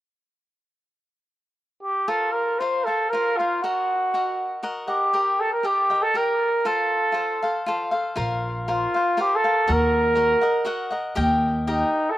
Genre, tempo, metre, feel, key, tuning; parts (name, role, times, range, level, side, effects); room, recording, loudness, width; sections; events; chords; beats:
mexican folk, mariachi; 119 BPM; 3/4; straight; A4 = 440 Hz
mellow trumpet; melody; 1.8-12.2 s; Eb4 to C5; -21 LUFS; right 1 dB
cavaquinho; accompaniment; 2.1-12.2 s; F4 to G5; -26 LUFS; left 2 dB
upright bass; bass; 8.2-11.8 s; Bb1 to Eb2; -24 LUFS; equal
little or no reverb; recorded outdoors, with no room sound; -20 LUFS; side -14 dB against mid
0.6-2.1 A section; 2.1-8.2 B section; 8.2-12.2 C section
0.6 N.C.; 2.1 Bbsus2; 3.6 Ebm; 5.1 Eb; 6.6 F; 8.2 Bbsus2; 9.7 Ebm; 11.2 Eb
| 0.57 1.08 1.59 | 2.10 2.62 3.13 | 3.63 4.13 4.63 | 5.13 5.63 6.13 | 6.64 7.15 7.66 | 8.18 8.69 9.20 | 9.70 10.19 10.68 | 11.18 11.68 12.18